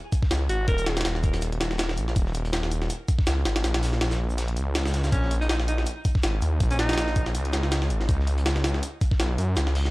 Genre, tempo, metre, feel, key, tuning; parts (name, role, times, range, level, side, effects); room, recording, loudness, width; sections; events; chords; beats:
drum and bass, jungle; 162 BPM; 4/4; swing 55% on 16ths; A4 = 440 Hz
crunchy breakbeat drum kit; drums; 0.1-9.9 s; hi-hat, shaker, snare drum; -40 LUFS; equal; high-pass filter on hats, high-pass filter on snare, high-pass filter on perc, high-pass filter on room
jungle sampler-style drum kit; drums; 0.1-9.9 s; hi-hat, kick drum, snare drum; -26 LUFS; equal
detuned saw bass; bass; 0.3-9.9 s; Eb1 to Gb2; -25 LUFS; equal; tube saturation
clear alto saxophone; melody; 0.5-1.1, 5.1-7.3 s; Db4 to Bb4; -33 LUFS; equal; dub echo
studio reverb; dry, gritty hardware recording, cassette tape; -22 LUFS; side -21 dB against mid
0.0-9.9 A section
0.0 Eb5; 3.6 Bbm; 7.3 N.C.
0.31 | 0.68 1.05 1.42 1.79 | 2.16 2.53 2.90 3.27 | 3.64 4.01 4.38 4.75 | 5.12 5.50 5.87 6.24 | 6.61 6.98 7.35 7.72 | 8.09 8.46 8.83 9.20 | 9.57